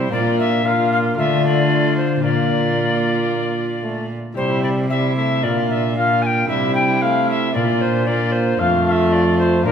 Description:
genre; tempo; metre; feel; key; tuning
classical, renaissance-style consort dance; 114 BPM; 4/4; straight; unclear; A4 = 440 Hz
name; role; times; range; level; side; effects
alto recorder; melody; 0.0-9.7 s; Bb4 to Ab5; -21 LUFS; left 1 dB; none
warm viola; second line; 0.0-9.7 s; E4 to F4; -23 LUFS; right 2 dB; none
clear trombone; accompaniment; 0.0-9.7 s; G3 to D4; -24 LUFS; equal; none
concert harp; accompaniment; 0.0-9.7 s; F2 to Bb4; -24 LUFS; left 6 dB; none
rich cello; bass; 0.0-9.7 s; F2 to D3; -22 LUFS; right 1 dB; none
room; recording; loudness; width
wet recital hall reverb, RT60 1.5 s; recorded in a church or concert hall; -16 LUFS; side -7 dB against mid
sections
0.0-9.7 A section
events
none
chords
0.1 Bb; 1.2 Dm; 2.2 Bb; 4.4 C; 5.4 Bb; 6.5 C; 7.5 Bb; 8.6 F

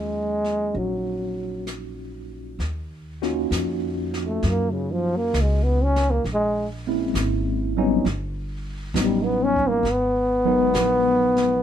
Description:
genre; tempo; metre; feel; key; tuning
jazz ballad; 66 BPM; 4/4; swing 68% on 8ths; Eb minor; A4 = 440 Hz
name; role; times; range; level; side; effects
breathy trombone; melody; 0.0-11.6 s; Db3 to Db4; -22 LUFS; equal; none
tine electric piano; accompaniment; 0.0-11.6 s; Gb3 to Bb4; -25 LUFS; equal; medium stereo tremolo
upright bass; bass; 0.0-11.6 s; G1 to Gb2; -27 LUFS; equal; none
jazz brush drum kit; drums; 0.4-11.6 s; brushed snare drum, hi-hat, kick drum, snare drum; -34 LUFS; equal; none
room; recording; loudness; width
light reverb; minimal, uncompressed stereo recording; -20 LUFS; side -10 dB against mid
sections
0.0-2.6 A section; 2.6-11.6 B section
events
break 1.7-2.6; trombone solo 2.6-11.6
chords
0.0 Ebm7; 6.2 Bbm7b5; 8.1 Eb7alt; 9.8 Abm7

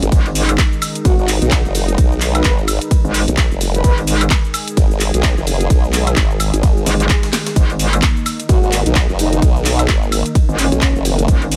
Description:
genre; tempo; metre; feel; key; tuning
bass house; 129 BPM; 4/4; swing 59% on 16ths; G# minor; A4 = 436 Hz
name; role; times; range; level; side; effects
sweeping resonant pad; sustained chords; 0.0-11.6 s; D#3 to G#4; -26 LUFS; equal; chorus, sidechain pumping
formant-sweep wobble bass; bass; 0.0-11.3 s; F#1 to B1; -19 LUFS; equal; chorus, tube saturation, sidechain pumping
garage drum kit; drums; 0.0-11.6 s; cabasa, handclaps, hi-hat, snare drum, woodblock; -23 LUFS; equal; none
metallic wobble bass; bass; 0.1-11.6 s; G#1; -19 LUFS; equal; chorus, overdrive, sidechain pumping
breakbeat sampler-style drum kit; drums; 0.1-11.6 s; ride cymbal, snare drum; -33 LUFS; equal; none
electronic kick drum; drums; 0.1-11.4 s; none; -17 LUFS; equal; none
breathy flute-like synth lead; melody; 1.1-3.9, 8.5-11.2 s; C#4 to B4; -26 LUFS; equal; chorus, delay
swell; sound effects; 6.8-7.6 s; none; -30 LUFS; equal; none
room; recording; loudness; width
digital ambience; none; -15 LUFS; mono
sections
0.0-11.6 A section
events
swell 6.8-7.6; drum fill 7.3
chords
0.0 G#5

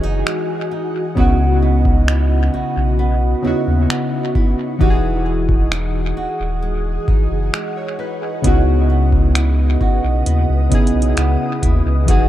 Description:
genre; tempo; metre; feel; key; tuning
contemporary R&B; 66 BPM; 4/4; straight; unclear; A4 = 440 Hz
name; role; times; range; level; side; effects
warm analog keys; accompaniment; 0.0-12.3 s; C#3 to C#5; -20 LUFS; equal; chorus, dub echo
ethereal airy pad; sustained chords; 0.0-12.3 s; F#4 to D#6; -27 LUFS; equal; ensemble chorus, built-in reverb, phaser
flamenco guitar; arpeggios; 0.0-12.3 s; C#3 to F#4; -26 LUFS; right 2 dB; dub echo
warm sub bass; bass; 0.0-12.3 s; D#1 to D#2; -16 LUFS; equal; none
booming analog drum machine; drums; 0.3-12.3 s; finger snaps, hi-hat, kick drum; -17 LUFS; equal; none
room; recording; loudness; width
little or no reverb; echo-heavy mix; -14 LUFS; side -13 dB against mid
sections
0.0-12.3 A section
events
none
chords
0.0 Emaj9; 1.2 C#m11; 4.8 Emaj9; 8.4 C#m11

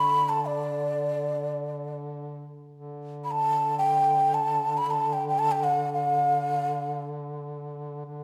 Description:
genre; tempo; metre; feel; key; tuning
Arabic maqam ensemble; free time; none; none; D maqam rast; A4 = 440 Hz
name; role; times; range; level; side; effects
breathy mellow ney; melody; 0.0-7.0 s; D5 to B5; -26 LUFS; equal; none
warm duduk; drone; 0.0-8.2 s; D3; -36 LUFS; equal; none
room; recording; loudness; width
wet recital hall reverb, RT60 1.4 s; none; -26 LUFS; mono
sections
0.0-2.7 A section; 2.7-8.2 A section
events
none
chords
none

